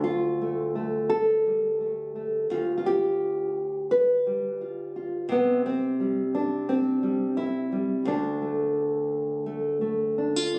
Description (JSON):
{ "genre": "folk, solo fingerstyle acoustic guitar", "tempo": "86 BPM", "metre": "4/4", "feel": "rubato", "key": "D dorian", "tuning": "A4 = 440 Hz", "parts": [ { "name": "nylon-string guitar", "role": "solo", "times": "0.0-10.6 s", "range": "D2 to B4", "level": "-26 LUFS", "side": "equal", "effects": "none" } ], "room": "light reverb", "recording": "recorded on a phone in the room, club reverb, compression", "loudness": "-26 LUFS", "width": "mono", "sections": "0.0-10.6 A section", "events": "none", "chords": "0.0 Dm; 2.5 G7/D; 5.3 C; 8.1 D5" }